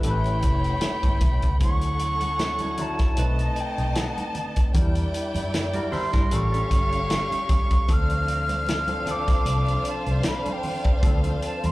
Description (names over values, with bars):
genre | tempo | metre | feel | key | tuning
lush 1970s-style soul | 76 BPM | 4/4 | swing 54% on 16ths | D dorian | A4 = 438 Hz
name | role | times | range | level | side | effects
rich studio violin section | second line | 0.0-11.7 s | C#4 to A5 | -32 LUFS | equal | slapback echo
barky tine electric piano | accompaniment | 0.0-11.7 s | F3 to C#5 | -32 LUFS | left 2 dB | fast tremolo, slapback echo
vintage muted fingered electric bass | bass | 0.0-11.7 s | F1 to G2 | -25 LUFS | equal | none
vintage drum kit | drums | 0.0-11.7 s | hi-hat, kick drum, snare drum | -24 LUFS | equal | none
reedy silver concert flute | melody | 0.1-11.7 s | F#5 to F6 | -28 LUFS | equal | slapback echo, tape echo
congas | percussion | 0.2-11.7 s | none | -37 LUFS | right 2 dB | none
clean electric guitar | riff | 5.7-7.7 s | C#4 to D5 | -35 LUFS | right 3 dB | lush chorus, slapback echo
room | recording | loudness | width
small room ambience | live gig heard through the venue's PA, club reverb | -21 LUFS | side -18 dB against mid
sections
0.0-11.7 A section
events
flute solo 0.0-11.7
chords
0.0 A9; 1.6 Dmaj9; 3.2 B7b9; 4.8 Em7b5; 6.3 A7b13; 7.9 Dm7